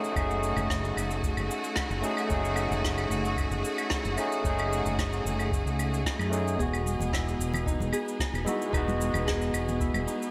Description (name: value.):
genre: sunset chillout.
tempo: 112 BPM.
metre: 4/4.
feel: straight.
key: F# dorian.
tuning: A4 = 436 Hz.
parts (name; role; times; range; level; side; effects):
overdriven tine electric piano; accompaniment; 0.0-10.3 s; G#3 to D#5; -34 LUFS; equal; delay.
clear studio string section; sustained chords; 0.0-10.3 s; A3 to G#4; -37 LUFS; equal; none.
cabasa, claves and rim click; drums; 0.0-10.3 s; none; -37 LUFS; equal; gated reverb.
mellow fretless electric bass; bass; 0.2-10.1 s; E1 to F#2; -34 LUFS; equal; none.
electronic kick drum; drums; 0.2-9.9 s; none; -35 LUFS; equal; none.
Celtic harp; arpeggios; 6.6-10.3 s; D#4 to G#4; -38 LUFS; equal; delay.
congas; percussion; 6.9-10.0 s; none; -40 LUFS; equal; none.
room: moderate lush hall reverb, RT60 2.2 s.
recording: bright 1980s-style digital production.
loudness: -29 LUFS.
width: mono.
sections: 0.0-10.3 A section.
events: none.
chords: 0.0 F#m69; 6.6 Emaj7.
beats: | 0.16 0.70 1.23 1.77 | 2.31 2.84 3.38 3.91 | 4.45 4.98 5.52 6.06 | 6.59 7.13 7.66 8.20 | 8.73 9.27 9.81.